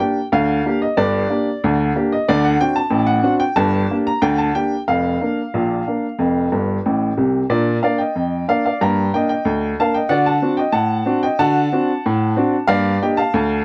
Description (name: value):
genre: ragtime piano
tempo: 92 BPM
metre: 2/4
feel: straight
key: Bb major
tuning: A4 = 440 Hz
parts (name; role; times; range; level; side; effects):
- warm upright piano; solo; 0.0-13.6 s; F1 to Bb5; -18 LUFS; equal; none
room: light reverb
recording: worn, warbling old tape, cassette tape, warbly pitch drift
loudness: -18 LUFS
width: mono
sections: 0.0-7.5 A section; 7.5-13.6 B section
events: upright piano fill 6.5-7.5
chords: 0.0 Gm; 2.3 D7; 3.6 Gm; 4.9 Bb/F; 6.2 F; 7.5 Bb; 8.8 Gm; 10.1 D7; 12.7 Gm